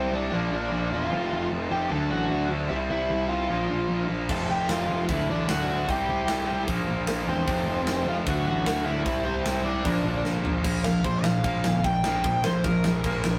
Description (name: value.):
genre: punk rock.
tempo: 151 BPM.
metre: 4/4.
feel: straight.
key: unclear.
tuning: A4 = 440 Hz.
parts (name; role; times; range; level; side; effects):
smooth overdriven lead guitar; melody; 0.0-13.4 s; C4 to A5; -31 LUFS; equal; none.
overdriven electric guitar; riff; 0.0-13.4 s; F2 to E4; -32 LUFS; equal; none.
tight distorted guitar; riff; 0.0-13.4 s; F2 to D4; -36 LUFS; equal; distortion.
fuzz picked electric bass; bass; 0.0-13.4 s; E1 to D2; -32 LUFS; equal; overdrive.
tight metal drum kit; drums; 4.3-13.3 s; crash cymbal, hi-hat, kick drum, snare drum, toms; -34 LUFS; equal; none.
room: moderate studio reverb, RT60 0.6 s.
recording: rough rehearsal-room recording.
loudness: -26 LUFS.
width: mono.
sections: 0.0-10.7 A section; 10.7-13.4 B section.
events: half time 0.0-10.7; drum fill 10.3-10.7; lead electric guitar solo 10.7-13.4.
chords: 0.3 Bb; 1.1 F; 1.9 D; 2.7 C; 3.5 Bb; 4.3 F; 5.1 D; 5.9 C; 6.7 Bb; 7.5 F; 8.3 D; 9.1 C; 9.9 Bb; 10.7 Bb5.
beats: 0.33 0.72 | 1.12 1.52 1.91 2.31 | 2.71 3.10 3.50 3.90 | 4.29 4.69 5.09 5.49 | 5.88 6.28 6.68 7.08 | 7.47 7.87 8.27 8.66 | 9.06 9.46 9.86 10.26 | 10.65 11.05 11.45 11.85 | 12.24 12.64 13.04.